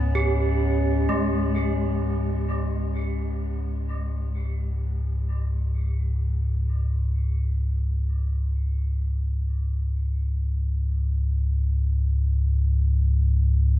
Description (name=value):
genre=dark ambient drone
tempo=free time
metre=none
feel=none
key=unclear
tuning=A4 = 441 Hz
part: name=gamelan-type bronze metallophone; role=arpeggios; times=0.0-6.7 s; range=E3 to G4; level=-30 LUFS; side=right 2 dB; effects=diffuse ambient delay
part: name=deep rumbling drone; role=drone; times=0.0-13.8 s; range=C#2 to G#2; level=-23 LUFS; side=equal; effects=built-in reverb, phaser, lush chorus
part: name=metallic inharmonic drone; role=texture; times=0.0-1.1 s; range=C#4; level=-30 LUFS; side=left 2 dB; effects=chorus, built-in reverb
room=wet cathedral reverb, RT60 7.5 s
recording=dark, warm production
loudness=-22 LUFS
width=side -14 dB against mid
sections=0.0-1.1 A section; 1.1-13.8 B section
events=none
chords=0.0 C#5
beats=free time